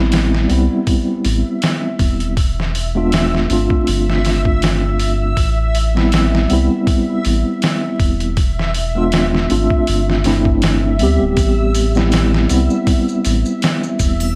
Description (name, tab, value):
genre	trip hop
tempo	80 BPM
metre	4/4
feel	swing 56% on 16ths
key	A minor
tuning	A4 = 440 Hz
part	mellow tine electric piano	accompaniment	0.0-14.4 s	G3 to G4	-20 LUFS	equal	tremolo, tape echo
part	round analog bass	bass	0.0-14.4 s	D1 to D2	-20 LUFS	equal	none
part	backwards swelling texture	texture	0.4-14.4 s	E5	-29 LUFS	equal	built-in reverb
part	trip hop sampler-style drum kit	drums	0.1-14.4 s	hi-hat, kick drum, snare drum	-21 LUFS	equal	studio reverb
part	maracas and triangle	percussion	11.4-14.3 s	none	-33 LUFS	equal	none
room	little or no reverb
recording	vinyl crackle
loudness	-16 LUFS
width	mono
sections	0.0-14.4 A section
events	none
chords	0.0 Am7; 2.4 E7b9; 3.9 G9sus4; 5.4 Am7; 8.4 E7b9; 9.9 G9sus4; 11.4 Am7